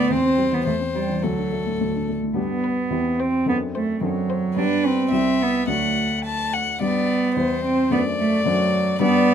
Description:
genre	quick classical-period movement for piano trio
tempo	108 BPM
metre	2/4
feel	straight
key	unclear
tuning	A4 = 440 Hz
part	rich violin	melody	0.0-9.3 s	A4 to A5	-25 LUFS	left 5 dB	none
part	warm cello	second line	0.0-9.3 s	F#3 to D4	-21 LUFS	right 3 dB	none
part	warm baby grand piano	accompaniment	0.0-9.3 s	C2 to D5	-25 LUFS	left 3 dB	none
room	light reverb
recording	close, detailed microphones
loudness	-19 LUFS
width	side -8 dB against mid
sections	0.0-2.4 A section; 2.4-9.3 B section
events	none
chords	0.1 C/E; 1.2 D; 2.4 G; 2.9 C/E; 3.5 D7/F#; 4.6 G; 5.1 C; 5.7 D; 6.8 G; 7.4 C/E; 7.9 D7/F#

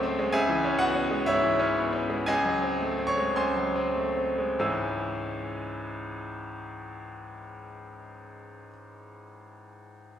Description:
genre	classical, virtuoso piano study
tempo	91-133 BPM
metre	4/4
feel	rubato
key	C# minor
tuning	A4 = 440 Hz
part	bright grand piano	solo	0.0-10.2 s	C#2 to E6	-27 LUFS	equal	none
room	wet concert hall reverb, RT60 1.9 s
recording	recorded in a church or concert hall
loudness	-25 LUFS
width	side -9 dB against mid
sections	0.0-4.6 A section; 4.6-9.7 B section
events	slowing down 0.0-4.6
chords	0.4 C#m; 2.3 G#7/C#; 4.6 C#m

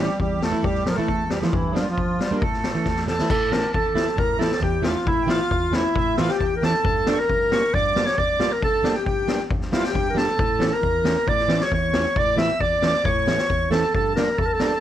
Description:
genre	klezmer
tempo	135 BPM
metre	4/4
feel	straight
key	A phrygian dominant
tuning	A4 = 441 Hz
part	mellow clarinet	melody	0.0-14.8 s	E3 to E5	-23 LUFS	equal	none
part	accordion	second line	0.0-14.8 s	E4 to E6	-28 LUFS	right 2 dB	light tremolo tuning
part	flamenco guitar	accompaniment	0.0-14.7 s	E2 to F4	-26 LUFS	right 3 dB	none
part	street-band drum kit	drums	0.2-14.7 s	crash cymbal, kick drum, snare drum	-25 LUFS	left 2 dB	none
room	moderate studio reverb, RT60 0.6 s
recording	none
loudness	-19 LUFS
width	side -11 dB against mid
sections	0.0-3.3 A section; 3.3-14.8 B section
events	drum fill 2.9-3.3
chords	0.0 A5; 1.5 Gm; 2.4 A; 6.8 Gm; 10.4 A; 13.9 Gm

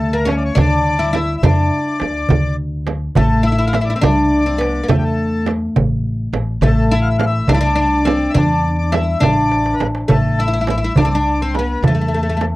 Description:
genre	Arabic maqam ensemble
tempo	69 BPM (dotted quarters)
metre	6/8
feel	straight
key	D maqam nahawand, A maqam bayati from 3.2 s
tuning	A4 = 444 Hz
part	oud	melody	0.0-12.4 s	A3 to E4	-18 LUFS	left 1 dB	none
part	accordion	second line	0.0-12.5 s	G4 to F5	-24 LUFS	left 4 dB	none
part	upright bass	bass	0.0-12.6 s	A1 to F2	-19 LUFS	equal	none
part	darbuka	percussion	0.0-12.5 s	none	-19 LUFS	right 1 dB	none
part	frame drum	percussion	0.3-12.6 s	none	-22 LUFS	right 6 dB	none
room	light reverb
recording	dry, close 1970s-style studio recording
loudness	-14 LUFS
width	side -18 dB against mid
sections	0.0-3.2 A section; 3.2-12.6 B section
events	drum fill 9.5-10.1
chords	none

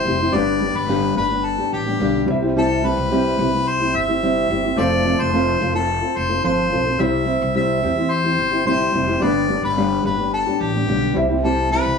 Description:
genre	acoustic pop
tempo	108 BPM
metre	4/4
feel	straight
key	C major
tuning	A4 = 440 Hz
part	mellow harmonica	melody	0.0-12.0 s	G4 to E5	-21 LUFS	left 2 dB	none
part	clear upright piano	accompaniment	0.0-12.0 s	G3 to E5	-28 LUFS	left 1 dB	none
part	nylon-string guitar	accompaniment	0.0-12.0 s	G2 to A4	-20 LUFS	equal	none
part	upright bass	bass	0.0-12.0 s	F1 to E2	-26 LUFS	left 1 dB	none
room	moderate studio reverb, RT60 0.8 s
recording	small room ambience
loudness	-17 LUFS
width	side -5 dB against mid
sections	0.0-12.0 A section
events	none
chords	0.3 G; 2.3 C; 4.8 F; 7.0 C; 9.2 G; 11.2 C

